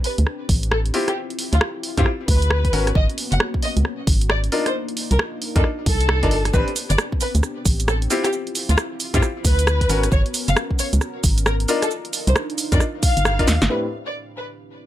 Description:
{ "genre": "UK garage, two-step garage", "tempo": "134 BPM", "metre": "4/4", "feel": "swing 63% on 16ths", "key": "unclear", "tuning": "A4 = 440 Hz", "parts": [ { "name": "dark studio violin section", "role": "melody", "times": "0.0-14.5 s", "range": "F4 to F#5", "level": "-26 LUFS", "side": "left 1 dB", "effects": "digital delay" }, { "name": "warm analog pad", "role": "sustained chords", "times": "0.0-14.9 s", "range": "A2 to B4", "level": "-33 LUFS", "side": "left 2 dB", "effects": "chorus, sidechain pumping" }, { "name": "punchy analog drum machine", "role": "drums", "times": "0.0-13.7 s", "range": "cabasa, hi-hat, rim click, snare drum", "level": "-23 LUFS", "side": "right 2 dB", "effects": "none" }, { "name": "organ-like FM bass", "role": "bass", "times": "0.2-13.7 s", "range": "F#1 to G2", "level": "-19 LUFS", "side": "equal", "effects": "none" }, { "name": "electronic kick drum", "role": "drums", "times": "0.5-13.5 s", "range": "none", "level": "-20 LUFS", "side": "equal", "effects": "none" }, { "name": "bright grand piano", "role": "stabs", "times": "0.9-13.8 s", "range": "A2 to B4", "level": "-24 LUFS", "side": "left 2 dB", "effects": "low-pass filter, ping-pong delay" } ], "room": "light reverb", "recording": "none", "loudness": "-18 LUFS", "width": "side -13 dB against mid", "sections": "0.0-13.7 A section; 13.7-14.9 B section", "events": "band accent 13.3; drum fill 13.5; filter sweep on grand piano 13.7-14.9; filter sweep on analog synth pad 13.7-14.9", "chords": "0.0 Am11; 0.9 Dm11; 2.7 G#m11; 4.5 Cm11; 6.5 Am11; 8.1 Dm11; 9.9 G#m11; 11.7 Cm11 (rootless); 13.7 Am11" }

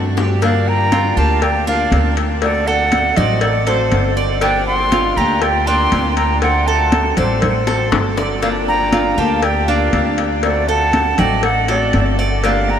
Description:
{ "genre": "latin, Cuban son and guajira", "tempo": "120 BPM", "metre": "4/4", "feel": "straight", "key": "G minor", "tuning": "A4 = 440 Hz", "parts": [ { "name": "fingerpicked steel-string acoustic guitar", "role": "accompaniment", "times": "0.0-12.8 s", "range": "D3 to G4", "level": "-24 LUFS", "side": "left 4 dB", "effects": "lush chorus" }, { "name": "Cuban tres", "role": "arpeggios", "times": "0.0-12.8 s", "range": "D4 to D5", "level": "-22 LUFS", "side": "right 3 dB", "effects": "analog delay" }, { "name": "upright bass", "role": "bass", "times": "0.0-12.8 s", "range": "G1 to G2", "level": "-19 LUFS", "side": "equal", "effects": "none" }, { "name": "bongos and cowbell", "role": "percussion", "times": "0.2-12.7 s", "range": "none", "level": "-24 LUFS", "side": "left 6 dB", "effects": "none" }, { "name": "reedy concert flute", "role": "melody", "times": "0.4-12.8 s", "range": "C5 to C6", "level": "-18 LUFS", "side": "equal", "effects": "analog delay" }, { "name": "breathy bright jazz flute", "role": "second line", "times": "0.4-12.8 s", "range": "A4 to G5", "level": "-24 LUFS", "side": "right 6 dB", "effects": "analog delay" }, { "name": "congas", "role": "percussion", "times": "0.4-12.8 s", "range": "none", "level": "-23 LUFS", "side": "equal", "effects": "none" } ], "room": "wet huge ambient reverb, RT60 7.4 s", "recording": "dreamy mix soaked in reverb", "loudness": "-13 LUFS", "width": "side -8 dB against mid", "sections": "0.4-12.8 A section", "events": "drum fill 0.0-0.4, 7.7-8.4", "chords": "0.4 Gm7; 2.4 D7; 4.4 Gm7; 6.4 D7; 8.4 Gm7; 10.4 D7" }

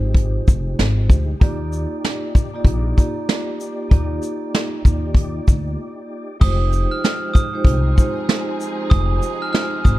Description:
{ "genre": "hip hop, boom-bap hip-hop", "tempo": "96 BPM", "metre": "4/4", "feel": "swing 62% on 16ths", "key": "F dorian", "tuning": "A4 = 440 Hz", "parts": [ { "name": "vibraphone with soft mallets", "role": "accompaniment", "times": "0.0-10.0 s", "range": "Ab3 to D5", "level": "-27 LUFS", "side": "right 1 dB", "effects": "cassette tape, high-pass filter, low-pass filter" }, { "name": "mellow tonewheel organ", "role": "sustained chords", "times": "0.0-10.0 s", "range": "F3 to G5", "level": "-34 LUFS", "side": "left 1 dB", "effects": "chorus vibrato, slow rotary speaker, high-pass filter, low-pass filter" }, { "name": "upright bass", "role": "bass", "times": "0.0-10.0 s", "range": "F1 to Eb2", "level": "-20 LUFS", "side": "equal", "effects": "none" }, { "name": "soft brush drum kit", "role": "drums", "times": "0.1-10.0 s", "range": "crash cymbal, hi-hat, kick drum, shaker, snare drum", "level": "-16 LUFS", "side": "equal", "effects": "none" }, { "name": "glockenspiel with brass mallets", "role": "melody", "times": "6.4-10.0 s", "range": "Eb6 to F6", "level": "-26 LUFS", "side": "right 4 dB", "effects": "high-pass filter, low-pass filter, slapback echo" }, { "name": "warm studio string section", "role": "stabs", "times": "7.7-10.0 s", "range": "C4 to Ab4", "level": "-31 LUFS", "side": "left 1 dB", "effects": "high-pass filter, low-pass filter, slapback echo" } ], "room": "little or no reverb", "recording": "dark, warm production", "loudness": "-16 LUFS", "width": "side -16 dB against mid", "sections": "0.0-6.4 A section; 6.4-10.0 B section", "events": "break 5.8-6.4", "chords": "0.0 Fm9; 1.4 Ebmaj7; 6.4 Fm9" }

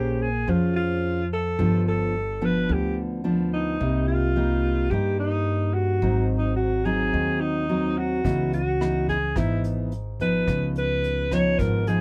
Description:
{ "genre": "bossa nova", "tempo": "108 BPM", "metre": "4/4", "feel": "straight", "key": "unclear", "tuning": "A4 = 440 Hz", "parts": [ { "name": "breathy alto saxophone", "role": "melody", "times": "0.0-12.0 s", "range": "Eb4 to Db5", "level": "-28 LUFS", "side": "equal", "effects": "none" }, { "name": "nylon-string guitar", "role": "accompaniment", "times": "0.0-12.0 s", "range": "G2 to C5", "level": "-28 LUFS", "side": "equal", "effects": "none" }, { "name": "upright bass", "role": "bass", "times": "0.0-12.0 s", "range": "G1 to G2", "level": "-29 LUFS", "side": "equal", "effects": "none" }, { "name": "vintage brush drum kit", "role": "drums", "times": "8.2-12.0 s", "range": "hi-hat, kick drum, rim click", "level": "-34 LUFS", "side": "equal", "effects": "none" } ], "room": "light reverb", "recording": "none", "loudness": "-24 LUFS", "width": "mono", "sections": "0.0-12.0 A section", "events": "none", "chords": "0.0 Bbm9; 1.6 G7; 3.8 Cm7; 6.0 Ab7; 8.2 Dbm9; 10.5 Db9" }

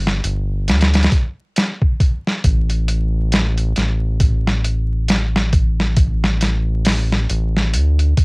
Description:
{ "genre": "trip hop", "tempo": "68 BPM", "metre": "4/4", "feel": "swing 58% on 16ths", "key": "unclear", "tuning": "A4 = 440 Hz", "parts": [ { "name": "round analog bass", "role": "bass", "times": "0.0-8.1 s", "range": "G1 to D2", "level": "-17 LUFS", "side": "equal", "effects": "none" }, { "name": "boom bap sampler-style drum kit", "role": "drums", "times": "0.1-8.2 s", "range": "hi-hat, kick drum, snare drum", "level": "-16 LUFS", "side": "equal", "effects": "none" } ], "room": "little or no reverb", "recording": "home recording on cassette, vinyl crackle", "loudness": "-15 LUFS", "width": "side -38 dB against mid", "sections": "0.0-8.2 A section", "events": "none", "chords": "none" }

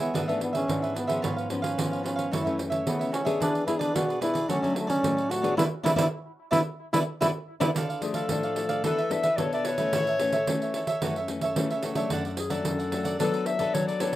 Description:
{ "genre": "samba and choro", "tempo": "110 BPM", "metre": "4/4", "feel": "straight", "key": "unclear", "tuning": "A4 = 440 Hz", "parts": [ { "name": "warm trombone", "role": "melody", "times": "0.0-7.7 s", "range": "A3 to F#4", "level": "-28 LUFS", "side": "equal", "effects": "none" }, { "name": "cavaquinho", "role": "accompaniment", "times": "0.0-14.2 s", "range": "D4 to G#5", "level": "-31 LUFS", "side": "right 3 dB", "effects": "none" }, { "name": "nylon-string guitar", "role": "accompaniment", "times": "0.0-14.2 s", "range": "F#2 to A4", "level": "-30 LUFS", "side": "left 3 dB", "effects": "none" }, { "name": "pandeiro", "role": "percussion", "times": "0.0-14.2 s", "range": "none", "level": "-31 LUFS", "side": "right 3 dB", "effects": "none" }, { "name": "warm clarinet", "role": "second line", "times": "8.0-14.2 s", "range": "G#4 to E5", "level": "-28 LUFS", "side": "left 3 dB", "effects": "none" } ], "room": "light reverb", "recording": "rough home demo mix", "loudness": "-24 LUFS", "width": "side -14 dB against mid", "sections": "0.0-7.8 A section; 7.8-14.2 B section", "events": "band accent 5.6-7.8; clarinet solo 7.8-14.2", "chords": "0.1 E7/G#; 1.2 C#7/G#; 2.3 F#m7; 3.4 E7; 4.5 Dmaj7; 5.6 E5; 7.8 Dm; 8.8 E7sus4; 9.9 A; 11.0 F#m7; 12.1 D/F#; 13.2 Bm7/F#" }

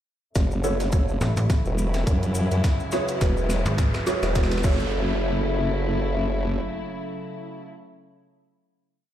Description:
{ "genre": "glitch hop", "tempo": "105 BPM", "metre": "4/4", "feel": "swing 56% on 16ths", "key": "F# minor", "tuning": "A4 = 440 Hz", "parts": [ { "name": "warm studio string section", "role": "sustained chords", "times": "0.4-7.7 s", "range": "C#3 to E4", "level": "-31 LUFS", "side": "left 1 dB", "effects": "sidechain pumping, low-pass filter" }, { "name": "formant-sweep wobble bass", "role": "bass", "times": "0.4-6.6 s", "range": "E1 to F#2", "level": "-24 LUFS", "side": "equal", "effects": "chorus" }, { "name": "drum and bass drum kit", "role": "drums", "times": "0.4-4.8 s", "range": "crash cymbal, hi-hat, snare drum", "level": "-35 LUFS", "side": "equal", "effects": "overdrive, high-pass filter on snare, high-pass filter on hats, high-pass filter on cymbals" }, { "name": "electronic kick drum", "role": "drums", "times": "0.4-4.8 s", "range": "none", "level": "-22 LUFS", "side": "equal", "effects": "overdrive" }, { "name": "maracas", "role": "percussion", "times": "0.4-4.9 s", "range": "none", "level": "-41 LUFS", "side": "left 3 dB", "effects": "none" }, { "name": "riser", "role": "sound effects", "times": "2.2-4.9 s", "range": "none", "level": "-37 LUFS", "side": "equal", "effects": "none" }, { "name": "mellow electric guitar", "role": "stabs", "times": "0.6-7.7 s", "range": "E4 to C#5", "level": "-29 LUFS", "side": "right 2 dB", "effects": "ensemble chorus, sidechain pumping, digital delay" }, { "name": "slap-like FM bass", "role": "bass", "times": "1.2-3.9 s", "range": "G#1 to A1", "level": "-22 LUFS", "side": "equal", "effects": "none" } ], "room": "light reverb", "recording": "played on a big sound system in a bare room, large studio reverb", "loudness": "-21 LUFS", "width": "side -11 dB against mid", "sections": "0.4-4.9 build; 4.9-7.2 final hit", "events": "build-up 0.4-4.9; drum fill 0.4-4.9; filter sweep on string section 0.4-4.9; riser 2.2-4.9", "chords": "0.4 F#m7; 2.6 E69; 4.6 F#m7" }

